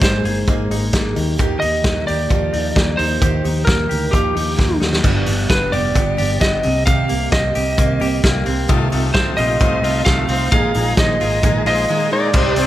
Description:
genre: jangly indie pop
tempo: 131 BPM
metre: 4/4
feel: straight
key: unclear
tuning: A4 = 441 Hz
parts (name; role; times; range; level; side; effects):
- lightly driven lead guitar; melody; 0.0-12.7 s; G4 to F5; -20 LUFS; right 1 dB; slapback echo
- picked steel-string acoustic guitar; accompaniment; 0.0-12.7 s; G2 to Ab4; -24 LUFS; right 6 dB; none
- semi-hollow electric guitar; arpeggios; 0.0-12.7 s; G2 to Ab4; -23 LUFS; left 4 dB; slapback echo
- vintage muted fingered electric bass; bass; 0.0-12.7 s; F1 to Eb2; -22 LUFS; equal; none
- loose indie drum kit; drums; 0.0-12.7 s; crash cymbal, hi-hat, kick drum, snare drum; -18 LUFS; equal; none
- combo organ; accompaniment; 8.7-12.7 s; C4 to C5; -24 LUFS; left 5 dB; none
room: light reverb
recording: none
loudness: -14 LUFS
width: side -14 dB against mid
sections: 0.0-5.0 A section; 5.0-12.3 B section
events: drum fill 4.6-5.0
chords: 0.0 Absus2; 1.2 Ebadd9; 5.0 G7; 6.6 Cm7; 8.7 F7; 10.5 Bb7sus4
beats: 0.02 0.47 0.93 | 1.39 1.85 2.30 2.76 | 3.22 3.67 4.13 4.59 | 5.04 5.50 5.96 6.41 | 6.87 7.33 7.78 8.24 | 8.70 9.15 9.61 10.06 | 10.52 10.98 11.43 11.89 | 12.35

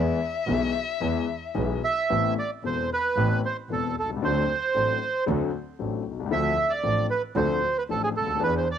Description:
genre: tango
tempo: 114 BPM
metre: 4/4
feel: rubato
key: unclear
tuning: A4 = 439 Hz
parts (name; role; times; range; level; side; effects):
- warm violin; second line; 0.0-1.8 s; E5; -30 LUFS; left 7 dB; cassette tape
- warm grand piano; accompaniment; 0.0-8.6 s; E1 to A4; -28 LUFS; left 7 dB; cassette tape
- rich double bass; bass; 0.0-8.6 s; E1 to E2; -30 LUFS; right 4 dB; none
- bandoneon; melody; 1.8-8.8 s; G#4 to E5; -25 LUFS; right 4 dB; cassette tape
room: light reverb, small room ambience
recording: home recording on cassette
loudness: -23 LUFS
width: side -9 dB against mid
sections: 0.0-2.1 A section; 2.1-8.8 B section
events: violin solo 0.0-2.1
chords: 0.0 E; 2.1 Amadd9; 4.2 D7; 6.3 Dm7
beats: 0.49 1.02 1.56 | 2.11 2.64 3.17 3.70 | 4.22 4.75 5.28 5.80 | 6.32 6.84 7.36 7.89 | 8.41

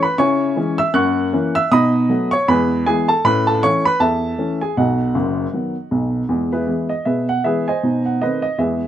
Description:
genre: jazz, stride piano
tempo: 157 BPM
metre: 4/4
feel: swing 58% on 8ths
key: E major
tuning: A4 = 441 Hz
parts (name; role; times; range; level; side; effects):
- warm upright piano; solo; 0.0-8.9 s; F#1 to F#6; -16 LUFS; equal; none
room: light reverb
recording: dark, warm production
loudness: -16 LUFS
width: side -11 dB against mid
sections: 0.0-6.3 A section; 6.3-8.9 B section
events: none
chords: 0.2 C#m; 1.0 F#7; 1.7 B7; 2.5 E; 3.2 A; 4.8 B; 6.3 E; 7.8 B7b9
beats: | 0.19 0.57 0.95 1.33 | 1.72 2.10 2.48 2.86 | 3.24 3.62 4.00 4.38 | 4.76 5.15 5.53 5.91 | 6.29 6.67 7.06 7.44 | 7.82 8.20 8.59

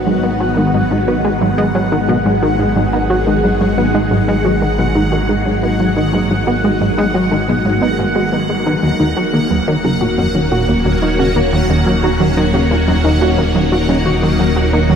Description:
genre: ambient, sequencer-driven space music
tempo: 89 BPM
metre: 4/4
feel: straight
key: G# minor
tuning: A4 = 440 Hz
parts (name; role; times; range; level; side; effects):
- phased string machine; sustained chords; 0.0-15.0 s; D#3 to F#4; -18 LUFS; left 1 dB; ensemble chorus, phaser, shimmer reverb
- warbly dusty pluck; arpeggios; 0.0-15.0 s; F#3 to B4; -18 LUFS; moving between left 2 dB and right 5 dB; chorus, auto-pan, shimmer reverb, ping-pong delay
- fat analog bass; bass; 0.0-15.0 s; D#1 to G#1; -20 LUFS; equal; none
- bubbling stepped-filter texture; texture; 0.0-15.0 s; F#5; -23 LUFS; equal; chorus, built-in reverb, shimmer reverb
- plucky analog bass; riff; 0.1-15.0 s; D#2 to D#4; -18 LUFS; left 1 dB; shimmer reverb, ping-pong delay
room: wet huge ambient reverb, RT60 7.4 s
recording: none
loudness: -12 LUFS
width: side -7 dB against mid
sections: 0.0-15.0 A section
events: none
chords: 0.0 G#m7; 8.8 D#m7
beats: 0.07 | 0.74 1.42 2.09 2.76 | 3.44 4.11 4.79 5.46 | 6.13 6.81 7.48 8.16 | 8.83 9.51 10.18 10.85 | 11.53 12.20 12.88 13.55 | 14.22 14.90

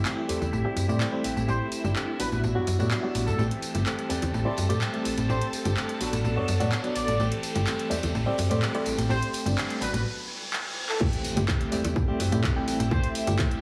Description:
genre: filtered disco house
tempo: 126 BPM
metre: 4/4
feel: straight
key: A dorian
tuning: A4 = 440 Hz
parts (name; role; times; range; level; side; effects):
- barky reed electric piano; accompaniment; 0.0-13.6 s; F#3 to G4; -33 LUFS; equal; fast tremolo, phaser, sidechain pumping, low-pass filter
- phased string machine; sustained chords; 0.0-13.6 s; E4 to A5; -40 LUFS; equal; ensemble chorus, phaser, sidechain pumping, low-pass filter
- direct-recorded clean electric guitar; riff; 0.0-13.6 s; E3 to G4; -37 LUFS; equal; sidechain pumping, low-pass filter
- slap-like FM bass; bass; 0.0-13.4 s; G1 to A2; -29 LUFS; equal; sidechain pumping, low-pass filter
- riser, reverse cymbal and impact; sound effects; 1.3-12.9 s; none; -43 LUFS; equal; none
- house drum kit; drums; 0.1-13.6 s; crash cymbal, handclaps, hi-hat, tambourine; -36 LUFS; equal; sidechain pumping on perc, high-pass filter on perc, sidechain pumping on hats, high-pass filter on hats, high-pass filter on snare, sidechain pumping on cymbals, high-pass filter on cymbals, high-pass filter on room
- tambourine; percussion; 0.1-10.0 s; none; -51 LUFS; equal; none
- clear trumpet section; melody; 1.5-13.1 s; A4 to D5; -37 LUFS; equal; sidechain pumping, low-pass filter, digital delay
- electronic kick drum; drums; 11.0-13.5 s; none; -28 LUFS; equal; none
room: moderate plate reverb, RT60 1.4 s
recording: heavily compressed radio sound, multiband compression, studio ambience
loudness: -27 LUFS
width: mono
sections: 0.0-11.0 A section; 11.0-13.6 B section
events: build-up 0.0-11.0; break 10.1-11.0; reverse cymbal 10.1-11.0; drum fill 10.5-11.0; drop 11.0-13.6; impact 11.0-12.9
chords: 0.0 Am7; 1.5 D7sus4/A; 2.2 Gmaj7/A; 3.4 Am7; 5.3 D7sus4/A; 6.0 Gmaj7/A; 7.2 Am7; 9.1 D7sus4/A; 9.8 Gmaj7/A; 11.0 Am7; 12.9 D7sus4/A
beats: 0.06 0.53 1.01 | 1.48 1.96 2.44 2.91 | 3.39 3.86 4.34 4.82 | 5.29 5.77 6.25 6.72 | 7.20 7.67 8.15 8.63 | 9.10 9.58 10.05 10.53 | 11.01 11.48 11.96 12.44 | 12.91 13.39

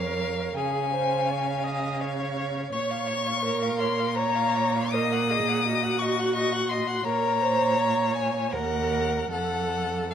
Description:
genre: classical, slow romantic movement for string quartet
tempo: 75-86 BPM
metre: 3/4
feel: rubato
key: Bb minor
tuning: A4 = 440 Hz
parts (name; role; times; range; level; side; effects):
- rich violin; melody; 0.0-10.1 s; F5 to Eb6; -27 LUFS; left 6 dB; none
- rich violin; second line; 0.0-10.1 s; A4 to Gb5; -32 LUFS; equal; none
- rich viola; accompaniment; 0.0-10.1 s; Gb4 to Eb5; -29 LUFS; right 3 dB; none
- rich cello; bass; 0.0-10.1 s; Eb2 to Db3; -30 LUFS; right 3 dB; none
room: light reverb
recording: dark, warm production, lossy compression artefacts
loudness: -23 LUFS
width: side -8 dB against mid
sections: 0.0-10.1 A section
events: none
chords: 0.0 Db/F; 0.6 Db; 2.7 Bbm; 4.9 Ebm/Bb; 7.1 Bbm; 8.5 Ebm; 9.3 F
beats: | 0.57 1.28 2.00 | 2.73 3.45 4.17 | 4.93 5.65 6.34 | 7.05 7.78 8.53 | 9.31 10.11

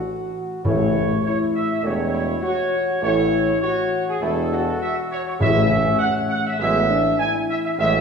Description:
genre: classical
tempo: 101 BPM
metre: 4/4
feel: straight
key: A major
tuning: A4 = 439 Hz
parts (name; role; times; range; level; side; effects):
- dark trumpet section; melody; 0.0-8.0 s; G#4 to G#5; -22 LUFS; right 1 dB; none
- warm French horn section; sustained chords; 0.0-7.9 s; B3 to F#4; -24 LUFS; left 3 dB; none
- clear trombone section; sustained chords; 0.6-8.0 s; E3 to A3; -30 LUFS; right 3 dB; none
- timpani; percussion; 0.6-1.5, 5.4-6.3 s; A2; -25 LUFS; left 2 dB; none
- warm tuba; bass; 0.7-8.0 s; E1 to A1; -25 LUFS; right 1 dB; none
room: wet recital hall reverb, RT60 1.6 s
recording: heard from further back in the room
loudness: -18 LUFS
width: side -6 dB against mid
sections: 0.0-8.0 A section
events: none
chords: 0.0 D (rootless); 0.6 A; 5.4 Eadd9/A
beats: 0.05 | 0.65 1.24 1.84 2.44 | 3.03 3.62 4.21 4.81 | 5.40 6.00 6.60 7.19 | 7.79

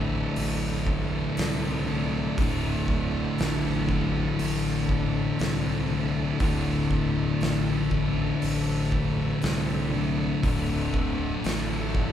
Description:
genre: stoner and doom metal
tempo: 60 BPM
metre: 4/4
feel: straight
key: unclear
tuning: A4 = 438 Hz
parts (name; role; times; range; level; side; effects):
- bright tonewheel organ; sustained chords; 0.0-12.1 s; D3 to E4; -36 LUFS; right 3 dB; slow rotary speaker, chorus vibrato
- thick fuzz guitar; riff; 0.0-12.1 s; D2 to D3; -27 LUFS; left 4 dB; distortion
- thick fuzz guitar; riff; 0.0-12.1 s; D2 to D3; -32 LUFS; right 5 dB; distortion
- fuzz fingered electric bass; bass; 0.0-12.1 s; D1 to C2; -32 LUFS; equal; overdrive
- oversized low-tuned drum kit; drums; 0.4-12.1 s; hi-hat, kick drum, snare drum; -31 LUFS; equal; none
room: moderate large studio reverb, RT60 1.0 s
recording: band playing live in one room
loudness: -24 LUFS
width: side -10 dB against mid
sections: 0.0-12.1 A section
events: none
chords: 0.0 D5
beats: 0.36 1.37 | 2.38 3.38 4.39 5.40 | 6.41 7.41 8.42 9.43 | 10.44 11.45

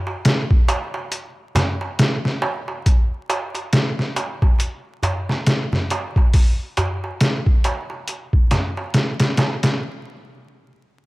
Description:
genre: trip hop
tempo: 69 BPM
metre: 4/4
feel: swing 59% on 16ths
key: none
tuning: none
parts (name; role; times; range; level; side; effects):
- darbuka; percussion; 0.1-9.8 s; none; -25 LUFS; right 1 dB; none
- trip hop sampler-style drum kit; drums; 0.2-9.8 s; hi-hat, kick drum, snare drum; -17 LUFS; equal; none
room: light reverb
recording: vinyl crackle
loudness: -18 LUFS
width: side -21 dB against mid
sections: 0.0-2.9 A section; 2.9-11.1 B section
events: break 1.1-2.9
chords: none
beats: 0.25 1.12 1.99 | 2.86 3.73 4.60 5.47 | 6.34 7.21 8.08 8.95

